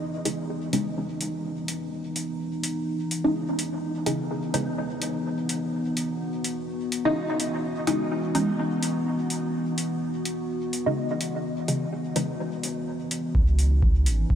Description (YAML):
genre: dub techno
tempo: 126 BPM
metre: 4/4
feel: swing 56% on 16ths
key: C# minor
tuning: A4 = 439 Hz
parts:
  - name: warbly tape-like pad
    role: sustained chords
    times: 0.0-14.4 s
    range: E3 to F#4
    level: -29 LUFS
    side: left 1 dB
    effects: chorus, built-in reverb, sidechain pumping
  - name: filtered dub chord stab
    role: stabs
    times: 0.3-12.3 s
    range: C#3 to D#4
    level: -29 LUFS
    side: equal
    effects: phaser, sidechain pumping, dub echo
  - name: electronic hi-hat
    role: drums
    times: 0.3-14.2 s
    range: none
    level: -31 LUFS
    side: equal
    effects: none
  - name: warm sub bass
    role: bass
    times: 13.3-14.4 s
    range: G#1 to C#2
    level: -21 LUFS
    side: equal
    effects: sidechain pumping
  - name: electronic kick drum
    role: drums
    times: 13.3-14.4 s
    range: none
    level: -22 LUFS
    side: equal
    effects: none
room: wet huge ambient reverb, RT60 7.5 s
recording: dreamy mix soaked in reverb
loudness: -24 LUFS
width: side -9 dB against mid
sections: 0.0-13.3 A section; 13.3-14.4 B section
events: none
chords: 0.0 C#madd9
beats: | 0.02 0.49 0.97 1.44 | 1.92 2.40 2.87 3.35 | 3.83 4.30 4.78 5.25 | 5.73 6.21 6.68 7.16 | 7.63 8.11 8.59 9.06 | 9.54 10.02 10.49 10.97 | 11.44 11.92 12.40 12.87 | 13.35 13.82 14.30